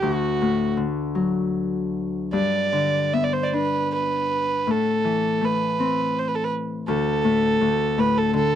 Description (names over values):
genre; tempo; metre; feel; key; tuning
celtic folk, Celtic slow air; 79 BPM; 3/4; uneven beats, rubato; unclear; A4 = 440 Hz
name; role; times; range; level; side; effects
warm fiddle; melody; 0.0-8.6 s; F#4 to E5; -23 LUFS; right 4 dB; none
Celtic harp; accompaniment; 0.0-8.6 s; D2 to D4; -23 LUFS; left 4 dB; none
room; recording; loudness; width
little or no reverb; dry, close 1970s-style studio recording; -20 LUFS; side -10 dB against mid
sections
0.0-8.6 A section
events
none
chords
0.0 D; 2.3 G; 4.7 Amadd9; 6.9 D5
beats
| 0.01 0.76 1.52 | 2.31 3.11 3.90 | 4.65 5.40 6.15 | 6.87 7.60 8.33